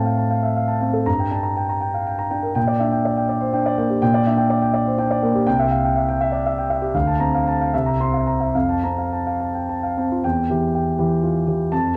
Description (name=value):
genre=classical, romantic character piece for solo piano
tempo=68-85 BPM (dotted quarters)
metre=6/8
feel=rubato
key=F major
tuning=A4 = 440 Hz
part: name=warm concert grand piano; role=solo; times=0.0-12.0 s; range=C2 to C6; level=-20 LUFS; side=equal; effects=none
room=moderate recital hall reverb, RT60 1.5 s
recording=close, detailed microphones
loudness=-20 LUFS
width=mono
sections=0.0-10.2 A section; 10.2-12.0 B section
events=none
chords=0.0 F/A; 1.1 Gm; 2.6 Gm/Bb; 5.5 C; 6.9 Dm7; 7.7 C7; 8.5 F; 10.2 Em